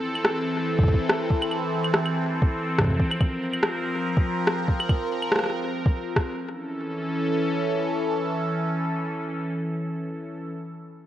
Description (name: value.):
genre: IDM.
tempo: 142 BPM.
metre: 4/4.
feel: swing 56% on 16ths.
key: unclear.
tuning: A4 = 440 Hz.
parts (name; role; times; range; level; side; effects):
phased analog pad; sustained chords; 0.0-10.5 s; E3 to Bb4; -26 LUFS; equal; phaser, chorus.
electronic claves and rim click; drums; 0.2-6.3 s; none; -26 LUFS; equal; overdrive, ping-pong delay.
electronic kick drum; drums; 0.8-6.3 s; none; -21 LUFS; equal; overdrive.
room: moderate lush hall reverb, RT60 2.2 s.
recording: worn, warbling old tape, cassette tape, warbly pitch drift.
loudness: -23 LUFS.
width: side -12 dB against mid.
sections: 0.0-6.4 A section; 6.4-9.8 B section.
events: none.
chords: 0.0 C6; 3.0 Bbsus2; 6.4 A.